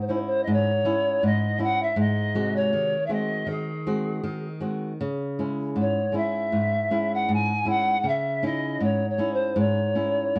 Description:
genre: fado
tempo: 79 BPM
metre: 2/4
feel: rubato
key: C# harmonic minor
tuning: A4 = 445 Hz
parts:
  - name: reedy polished pan flute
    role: melody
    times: 0.0-10.4 s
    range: G#4 to G#5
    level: -28 LUFS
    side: equal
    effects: plate reverb
  - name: flamenco guitar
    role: accompaniment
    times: 0.0-10.4 s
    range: G#2 to F#4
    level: -28 LUFS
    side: equal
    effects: none
room: moderate studio reverb, RT60 0.6 s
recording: dark, warm production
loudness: -25 LUFS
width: mono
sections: 0.0-10.4 A section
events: none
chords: 0.0 C#madd9; 2.0 G#7; 5.0 C#m; 8.0 C#madd9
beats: | 0.47 1.22 | 1.97 2.72 | 3.47 4.24 | 5.00 5.76 | 6.52 7.27 | 8.02 8.78 | 9.55 10.32

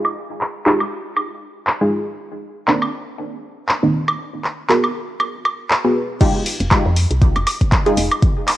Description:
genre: deep house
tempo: 119 BPM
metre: 4/4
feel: swing 57% on 16ths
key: unclear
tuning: A4 = 437 Hz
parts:
  - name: filtered dub chord stab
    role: stabs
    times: 0.0-8.6 s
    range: Eb3 to Cb5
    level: -20 LUFS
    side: right 1 dB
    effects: phaser, cassette tape, sidechain pumping, analog delay
  - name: house drum kit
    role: drums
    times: 0.0-8.6 s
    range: crash cymbal, handclaps, hi-hat, woodblock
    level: -20 LUFS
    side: equal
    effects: studio reverb, cassette tape
  - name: electronic kick drum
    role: drums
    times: 6.2-8.3 s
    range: none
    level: -15 LUFS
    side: equal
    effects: overdrive, studio reverb, cassette tape
  - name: woody FM bass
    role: bass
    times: 6.6-8.1 s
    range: F1 to F2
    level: -18 LUFS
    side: equal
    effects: sidechain pumping
room: light reverb, digital ambience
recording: home recording on cassette, low-pass filter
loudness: -16 LUFS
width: side -14 dB against mid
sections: 0.0-6.2 A section; 6.2-8.6 B section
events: filter sweep 0.0-6.2; drop 6.2-8.6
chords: 0.0 Fm9; 2.2 Cm9; 4.2 Abm9; 6.2 Fm9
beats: | 0.16 0.66 1.17 1.67 | 2.17 2.68 3.18 3.69 | 4.19 4.70 5.20 5.70 | 6.21 6.71 7.22 7.72 | 8.22

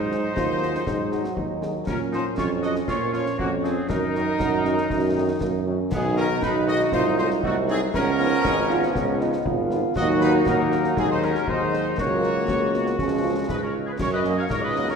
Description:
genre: military-style march for wind band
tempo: 119 BPM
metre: 2/4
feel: straight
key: F# major from 5.9 s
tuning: A4 = 440 Hz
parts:
  - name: warm trumpet section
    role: melody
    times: 0.0-15.0 s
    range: Gb4 to E#5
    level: -28 LUFS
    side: left 1 dB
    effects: none
  - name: clear woodwind section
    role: second line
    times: 0.0-15.0 s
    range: A3 to C#5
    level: -31 LUFS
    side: left 2 dB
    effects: none
  - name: warm euphonium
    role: second line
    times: 0.0-15.0 s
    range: A#3 to Gb4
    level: -28 LUFS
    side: right 4 dB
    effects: none
  - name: mellow trombone section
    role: sustained chords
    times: 0.0-14.8 s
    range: Eb3 to D#4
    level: -29 LUFS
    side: right 2 dB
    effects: none
  - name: warm tuba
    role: bass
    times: 0.0-14.9 s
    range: G#1 to Bb2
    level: -26 LUFS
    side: right 2 dB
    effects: none
  - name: mellow French horn section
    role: accompaniment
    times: 0.1-14.8 s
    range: Eb3 to Eb4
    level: -30 LUFS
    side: left 5 dB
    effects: none
  - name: concert snare drum, concert bass drum and clash cymbals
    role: drums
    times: 0.1-15.0 s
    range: none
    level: -32 LUFS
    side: left 1 dB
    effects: none
room: wet scoring stage reverb, RT60 1.7 s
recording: minimal, uncompressed stereo recording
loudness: -20 LUFS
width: side -6 dB against mid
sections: 0.0-14.0 A section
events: none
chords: 0.0 Ab7; 1.9 Bbm; 3.9 Ebm/Gb; 5.9 G#m/B; 6.9 Cdim7; 7.9 C#13; 10.0 D#m; 11.0 G#7/D#; 12.0 F#/C#; 13.0 C#; 14.0 F#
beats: 0.35 | 0.86 1.36 | 1.87 2.38 | 2.88 3.39 | 3.89 4.40 | 4.91 5.41 | 5.92 6.42 | 6.93 7.43 | 7.94 8.45 | 8.95 9.46 | 9.96 10.47 | 10.97 11.48 | 11.98 12.49 | 12.99 13.50 | 14.00 14.51

